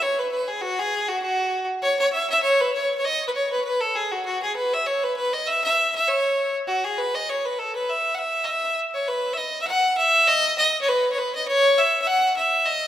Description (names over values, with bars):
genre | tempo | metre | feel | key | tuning
celtic folk | 199 BPM | 4/4 | swing 56% on 8ths | E major | A4 = 440 Hz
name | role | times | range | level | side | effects
bright fiddle | solo | 0.0-12.9 s | F#4 to F#5 | -20 LUFS | equal | none
room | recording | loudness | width
wet lush hall reverb, RT60 2.4 s | rough home demo mix | -20 LUFS | side -11 dB against mid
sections
0.0-9.1 A section; 9.1-12.9 B section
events
none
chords
none